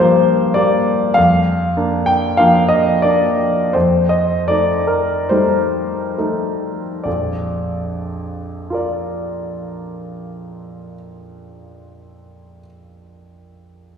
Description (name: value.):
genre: classical, romantic nocturne for solo piano.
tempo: 32-53 BPM.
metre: 4/4.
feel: rubato.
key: Bb major.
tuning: A4 = 440 Hz.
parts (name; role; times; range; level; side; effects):
warm grand piano; solo; 0.0-14.0 s; Bb1 to G5; -15 LUFS; left 1 dB; none.
room: wet recital hall reverb, RT60 1.7 s.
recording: recorded in a church or concert hall.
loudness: -14 LUFS.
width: side -7 dB against mid.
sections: 0.0-7.1 A section; 7.1-13.6 B section.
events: slowing down 0.0-7.1.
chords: 0.0 Gm7; 1.2 Bb/F; 3.7 F9; 7.1 Bb.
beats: | 1.16 2.38 3.74 5.30 | 7.05 8.71 10.32 11.96.